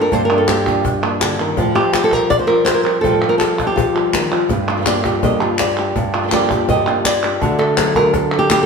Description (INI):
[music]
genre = flamenco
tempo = 164 BPM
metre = 4/4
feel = straight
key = G minor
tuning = A4 = 440 Hz
[part]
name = flamenco guitar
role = melody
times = 0.0-8.7 s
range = G2 to Eb5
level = -16 LUFS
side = equal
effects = none
[part]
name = flamenco guitar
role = stabs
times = 0.0-8.7 s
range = F2 to G4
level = -21 LUFS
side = right 2 dB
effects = none
[part]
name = cajon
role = percussion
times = 0.1-8.7 s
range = none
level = -23 LUFS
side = left 3 dB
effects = none
[part]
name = palmas hand claps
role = percussion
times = 0.3-8.7 s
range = none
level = -21 LUFS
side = right 1 dB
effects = none
[sound]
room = wet stone room reverb, RT60 1.4 s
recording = band playing live in one room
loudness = -14 LUFS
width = side -5 dB against mid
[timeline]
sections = 0.0-8.7 A section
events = none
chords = 0.0 Gm7; 1.6 Fadd9; 4.5 Gm7; 7.4 D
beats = | 0.11 0.48 0.85 1.21 | 1.58 1.94 2.31 2.67 | 3.04 3.41 3.77 4.14 | 4.50 4.87 5.23 5.59 | 5.96 6.32 6.69 7.05 | 7.41 7.78 8.14 8.50